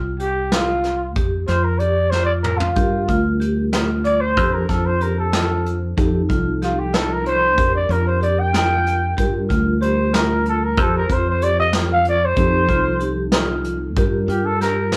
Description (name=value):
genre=progressive instrumental, band music in an uneven meter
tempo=187 BPM (eighths)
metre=5/8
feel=straight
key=G minor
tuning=A4 = 440 Hz
part: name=vibraphone with medium hard mallets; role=arpeggios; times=0.0-15.0 s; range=F4 to G4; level=-29 LUFS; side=equal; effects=none
part: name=fingered electric bass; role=bass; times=0.0-15.0 s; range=C2 to G2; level=-24 LUFS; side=equal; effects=none
part: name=growling trumpet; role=melody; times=0.2-14.9 s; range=F4 to G5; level=-22 LUFS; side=equal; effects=none
part: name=vintage brush drum kit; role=drums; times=0.2-15.0 s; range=hi-hat, kick drum, snare drum, toms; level=-24 LUFS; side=equal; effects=none
part: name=mellow tine electric piano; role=accompaniment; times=2.8-15.0 s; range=F3 to C5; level=-29 LUFS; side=equal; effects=none
room=wet small room reverb, RT60 0.6 s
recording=band playing live in one room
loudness=-19 LUFS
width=mono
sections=0.0-15.0 A section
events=trumpet solo 0.0-15.0; drum fill 2.1-2.8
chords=0.0 F5; 1.2 Bb69/F (rootless); 2.8 Gm7; 4.4 Dm7/F; 6.0 F7; 7.6 Bb6/F; 9.2 Gm7; 10.8 F69; 12.4 F7; 14.0 Gm7